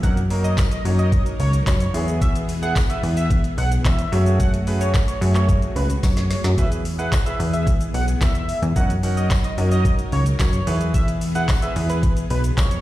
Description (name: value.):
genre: dance-pop.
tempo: 110 BPM.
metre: 4/4.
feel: straight.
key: E major.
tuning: A4 = 442 Hz.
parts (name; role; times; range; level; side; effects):
octave-doubled lead; melody; 0.0-12.8 s; B4 to F#5; -28 LUFS; right 1 dB; chorus, sidechain pumping, ping-pong delay.
clear concert grand piano; accompaniment; 0.0-12.2 s; F#3 to F#5; -29 LUFS; right 2 dB; sidechain pumping.
string machine, cellos; sustained chords; 0.0-12.8 s; E3 to A#4; -31 LUFS; left 1 dB; ensemble chorus, sidechain pumping.
plucky analog bass; bass; 0.0-12.8 s; B1 to F#2; -20 LUFS; equal; sidechain pumping.
smooth R&B drum kit; drums; 0.0-12.8 s; handclaps, hi-hat, kick drum, shaker, snare drum; -21 LUFS; equal; none.
tambourine; percussion; 0.6-12.7 s; none; -38 LUFS; left 10 dB; none.
room: digital ambience.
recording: played on a big sound system in a bare room, large studio reverb.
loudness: -17 LUFS.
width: side -15 dB against mid.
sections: 0.0-12.8 A section.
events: drum fill 6.0-6.6.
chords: 0.0 F#6; 1.9 E; 4.1 F#madd9; 6.6 E; 8.8 F#6; 10.7 E.